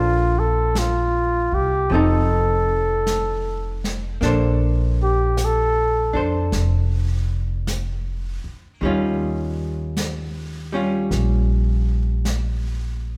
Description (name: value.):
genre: jazz ballad.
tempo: 52 BPM.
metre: 4/4.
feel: swing 66% on 8ths.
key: Bb major.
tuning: A4 = 440 Hz.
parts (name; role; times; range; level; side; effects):
breathy trumpet; melody; 0.0-6.2 s; F4 to A4; -23 LUFS; equal; none.
archtop guitar, miked and amplified; accompaniment; 0.0-13.2 s; Eb3 to C5; -27 LUFS; equal; none.
upright bass; bass; 0.0-13.2 s; F1 to F2; -24 LUFS; equal; none.
jazz brush drum kit; drums; 0.8-13.2 s; brushed snare drum, hi-hat, snare drum; -34 LUFS; equal; none.
room: moderate recital hall reverb, RT60 1.7 s.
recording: recorded in a church or concert hall.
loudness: -21 LUFS.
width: mono.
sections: 0.0-4.2 A section; 4.2-13.2 B section.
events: trumpet solo 4.2-13.2.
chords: 0.0 Bbmaj9; 1.9 F7; 4.2 Bbmaj9; 8.8 Eb9.